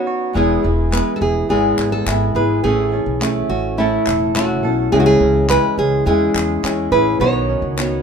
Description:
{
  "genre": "acoustic pop",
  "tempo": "105 BPM",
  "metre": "4/4",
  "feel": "straight",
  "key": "E major",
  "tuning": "A4 = 437 Hz",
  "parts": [
    { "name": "nylon-string guitar", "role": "melody", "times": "0.0-8.0 s", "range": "E4 to C#5", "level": "-19 LUFS", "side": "right 3 dB", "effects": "none" },
    { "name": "nylon-string guitar", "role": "accompaniment", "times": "0.0-8.0 s", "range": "E2 to C#5", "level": "-19 LUFS", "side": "left 2 dB", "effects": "none" },
    { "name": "direct-recorded clean electric guitar", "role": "arpeggios", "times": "0.0-8.0 s", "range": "D#3 to A4", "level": "-25 LUFS", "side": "right 7 dB", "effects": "spring reverb" },
    { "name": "upright bass", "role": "bass", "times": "0.4-8.0 s", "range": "E1 to E2", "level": "-21 LUFS", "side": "equal", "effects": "none" },
    { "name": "group handclap", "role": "percussion", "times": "0.9-7.9 s", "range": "none", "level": "-25 LUFS", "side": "left 3 dB", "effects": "none" },
    { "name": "dark baby grand piano", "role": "accompaniment", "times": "4.9-8.0 s", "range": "G#3 to C#5", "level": "-27 LUFS", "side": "left 7 dB", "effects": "none" }
  ],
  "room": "moderate studio reverb, RT60 0.5 s",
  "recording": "minimal, uncompressed stereo recording",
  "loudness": "-14 LUFS",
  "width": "side -6 dB against mid",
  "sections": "0.4-8.0 A section",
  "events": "none",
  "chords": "0.4 E; 2.6 A; 4.9 C#m; 7.2 Badd9"
}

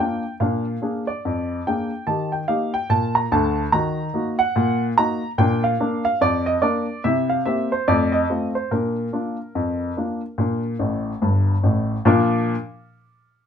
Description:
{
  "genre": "ragtime piano",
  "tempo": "72 BPM",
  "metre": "2/4",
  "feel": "swing 60% on 16ths",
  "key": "Bb major",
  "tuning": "A4 = 439 Hz",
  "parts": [
    { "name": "warm baby grand piano", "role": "solo", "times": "0.0-12.5 s", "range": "G1 to Bb5", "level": "-19 LUFS", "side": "equal", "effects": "none" }
  ],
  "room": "light reverb",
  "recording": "minimal, uncompressed stereo recording",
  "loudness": "-19 LUFS",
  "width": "side -8 dB against mid",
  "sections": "0.0-12.1 A section; 12.1-13.5 B section",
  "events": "grand piano fill 10.8-12.1",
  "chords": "0.4 Bb7; 2.1 Eb; 3.7 Ebm; 5.4 Bb; 7.0 C7; 7.9 F7; 8.7 Bb"
}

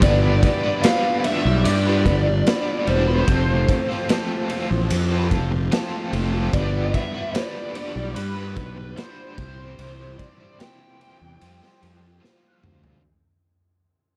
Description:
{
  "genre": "psychedelic rock",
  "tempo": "74 BPM",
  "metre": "4/4",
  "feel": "straight",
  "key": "G mixolydian",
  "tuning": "A4 = 441 Hz",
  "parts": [
    { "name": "smooth overdriven lead guitar", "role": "melody", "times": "0.0-12.6 s", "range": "B4 to G5", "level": "-29 LUFS", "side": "equal", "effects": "wah, slapback echo" },
    { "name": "bright tonewheel organ", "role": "sustained chords", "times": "0.0-13.0 s", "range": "C4 to B5", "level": "-41 LUFS", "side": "equal", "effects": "none" },
    { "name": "overdriven electric guitar", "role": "riff", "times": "0.0-13.0 s", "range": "C3 to C5", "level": "-30 LUFS", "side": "equal", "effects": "tremolo" },
    { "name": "fuzz fingered electric bass", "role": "bass", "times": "0.0-13.0 s", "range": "E1 to G2", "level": "-24 LUFS", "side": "equal", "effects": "overdrive" },
    { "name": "raw garage drum kit", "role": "drums", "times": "0.0-13.0 s", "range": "kick drum, ride cymbal, snare drum, toms", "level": "-26 LUFS", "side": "equal", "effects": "none" }
  ],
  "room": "little or no reverb",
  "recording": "none",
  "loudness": "-21 LUFS",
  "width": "mono",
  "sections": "0.0-13.0 A section",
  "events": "fade-out 0.0-13.0; drum fill 12.2-13.0",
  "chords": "0.0 G; 3.3 Fadd9; 6.5 G; 9.4 Cadd9; 11.4 Fsus2"
}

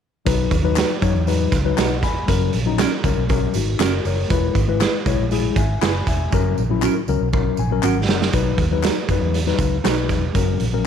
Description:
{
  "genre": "uptempo 1960s-style soul",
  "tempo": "119 BPM",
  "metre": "4/4",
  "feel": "straight",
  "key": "B major",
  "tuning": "A4 = 441 Hz",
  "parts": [
    { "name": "tine electric piano", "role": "accompaniment", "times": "0.3-10.9 s", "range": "F#3 to B5", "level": "-22 LUFS", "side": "left 11 dB", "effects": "overdrive, fast stereo tremolo" },
    { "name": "vintage muted fingered electric bass", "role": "bass", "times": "0.3-10.9 s", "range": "E1 to F#2", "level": "-22 LUFS", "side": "right 1 dB", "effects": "none" },
    { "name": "raw garage drum kit", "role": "drums", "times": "0.3-10.7 s", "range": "hi-hat, kick drum, snare drum", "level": "-22 LUFS", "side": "right 3 dB", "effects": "none" },
    { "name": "tambourine and handclaps", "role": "percussion", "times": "0.3-10.5 s", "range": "none", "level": "-32 LUFS", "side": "left 6 dB", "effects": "none" },
    { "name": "mellow electric guitar", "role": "stabs", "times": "0.8-10.0 s", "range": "C#4 to B4", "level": "-25 LUFS", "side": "right 12 dB", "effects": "none" }
  ],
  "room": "light reverb, small room ambience",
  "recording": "1960s-style stereo with parts hard left and right",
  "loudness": "-17 LUFS",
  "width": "side -8 dB against mid",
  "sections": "0.3-8.3 A section; 8.3-10.9 B section",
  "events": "drum fill 6.3-8.3; tine electric piano fill 7.3-8.3",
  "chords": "0.3 B; 2.3 F#; 4.3 E; 6.3 F#; 8.3 B; 10.4 F#"
}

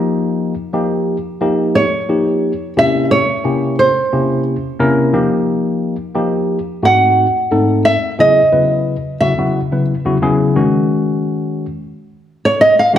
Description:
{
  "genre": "jazz",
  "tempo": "88 BPM",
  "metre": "4/4",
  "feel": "straight",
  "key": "C# minor from 8.2 s",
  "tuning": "A4 = 444 Hz",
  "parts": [
    { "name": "tine electric piano", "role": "accompaniment", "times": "0.0-13.0 s", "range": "Ab2 to B4", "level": "-15 LUFS", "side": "left 1 dB", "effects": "phaser" },
    { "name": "nylon-string guitar", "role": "melody", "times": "1.8-13.0 s", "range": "C5 to Gb5", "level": "-13 LUFS", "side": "right 1 dB", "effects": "none" }
  ],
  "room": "wet large studio reverb, RT60 1.3 s",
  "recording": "none",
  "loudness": "-13 LUFS",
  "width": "side -10 dB against mid",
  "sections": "0.0-8.2 A section; 8.2-13.0 A section",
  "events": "nylon-string guitar solo 0.0-13.0",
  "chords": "0.0 Eb7; 2.8 C7b9; 5.1 F9sus4; 6.8 Ab7b9; 8.2 C#m9; 10.6 G#5"
}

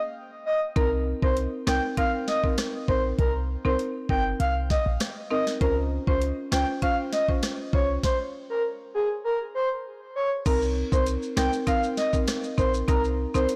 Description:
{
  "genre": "dancehall",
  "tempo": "99 BPM",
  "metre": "4/4",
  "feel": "straight",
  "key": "C phrygian",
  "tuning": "A4 = 440 Hz",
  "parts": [
    { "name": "breathy flute-like synth lead", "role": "melody", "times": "0.5-13.5 s", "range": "Ab4 to G5", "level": "-29 LUFS", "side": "equal", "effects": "chorus, tremolo, delay" },
    { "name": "buzzing marimba with medium mallets", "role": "accompaniment", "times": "0.8-13.6 s", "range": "C4 to C5", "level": "-32 LUFS", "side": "equal", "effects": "sidechain pumping" },
    { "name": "clean 808-style bass", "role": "bass", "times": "0.8-13.5 s", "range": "G1 to Db2", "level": "-30 LUFS", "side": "equal", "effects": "none" },
    { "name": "afro-pop drum kit", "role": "drums", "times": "0.8-13.6 s", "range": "crash cymbal, hi-hat, kick drum, rim click, snare drum", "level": "-30 LUFS", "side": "equal", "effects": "soft clipping on snare" },
    { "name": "maracas", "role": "percussion", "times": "10.5-13.6 s", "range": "none", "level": "-45 LUFS", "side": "equal", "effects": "none" }
  ],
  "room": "digital ambience",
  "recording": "blown-out, overdriven recording, overdrive",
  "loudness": "-26 LUFS",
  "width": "mono",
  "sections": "0.0-10.5 A section; 10.5-13.6 B section",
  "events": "break 0.0-0.8; stop 8.0-10.5",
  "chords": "0.0 N.C.; 0.8 Cm7; 5.6 Dbmaj7; 8.0 N.C.; 10.5 Cm7"
}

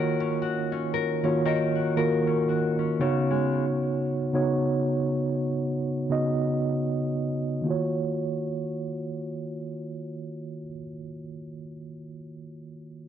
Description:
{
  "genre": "R&B",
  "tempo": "58 BPM",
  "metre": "4/4",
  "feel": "swing 58% on 16ths",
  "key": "Eb minor",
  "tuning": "A4 = 439 Hz",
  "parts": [
    { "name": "mellow tine electric piano", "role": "accompaniment", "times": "0.0-13.1 s", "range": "Db3 to Eb5", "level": "-26 LUFS", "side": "right 1 dB", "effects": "medium stereo tremolo, low-pass filter" },
    { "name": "nylon-string guitar", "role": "arpeggios", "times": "0.0-4.1 s", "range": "Db3 to Bb4", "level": "-30 LUFS", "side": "left 9 dB", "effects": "low-pass filter, ping-pong delay" }
  ],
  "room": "moderate lush hall reverb, RT60 2.2 s",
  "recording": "none",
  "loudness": "-24 LUFS",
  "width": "side -10 dB against mid",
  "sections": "0.0-7.7 A section; 7.7-11.8 B section",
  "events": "filter sweep 0.0-7.7",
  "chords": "0.0 Ebm7; 3.0 Db7sus4; 7.7 Ebm7"
}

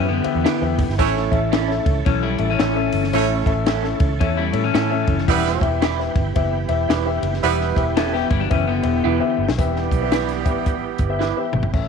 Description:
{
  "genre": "uptempo 1960s-style soul",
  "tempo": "112 BPM",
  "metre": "4/4",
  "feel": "swing 62% on 8ths",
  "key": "E dorian",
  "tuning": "A4 = 439 Hz",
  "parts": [
    { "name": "warm baby grand piano", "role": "accompaniment", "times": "0.0-11.9 s", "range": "A2 to E5", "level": "-25 LUFS", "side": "left 10 dB", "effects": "none" },
    { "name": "tonewheel organ", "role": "sustained chords", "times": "0.0-11.7 s", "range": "E3 to A4", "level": "-29 LUFS", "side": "right 16 dB", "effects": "chorus vibrato, fast rotary speaker" },
    { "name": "electric guitar at the edge of break-up", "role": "riff", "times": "0.0-9.4 s", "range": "D3 to A4", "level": "-24 LUFS", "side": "left 12 dB", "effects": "tube saturation" },
    { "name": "vintage muted fingered electric bass", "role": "bass", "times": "0.0-11.9 s", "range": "E1 to A2", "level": "-24 LUFS", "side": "right 2 dB", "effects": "none" },
    { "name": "compact cocktail drum kit", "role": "drums", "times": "0.2-11.9 s", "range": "crash cymbal, hi-hat, kick drum, ride cymbal, snare drum, toms", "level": "-23 LUFS", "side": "left 2 dB", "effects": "none" },
    { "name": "electric guitar through a small old amp", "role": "stabs", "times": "0.4-11.4 s", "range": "C#4 to B4", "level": "-26 LUFS", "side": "right 14 dB", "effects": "phaser" },
    { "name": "warm horn section", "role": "second line", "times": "1.0-11.5 s", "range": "E3 to C#5", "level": "-23 LUFS", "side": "right 13 dB", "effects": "none" }
  ],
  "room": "light reverb, small room ambience",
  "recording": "1960s-style stereo with parts hard left and right",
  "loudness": "-17 LUFS",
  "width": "side -6 dB against mid",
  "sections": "0.0-9.6 A section; 9.6-11.7 B section",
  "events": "drum fill 9.0-9.6, 11.2-11.7",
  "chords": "0.0 Em; 1.0 A; 5.3 Em"
}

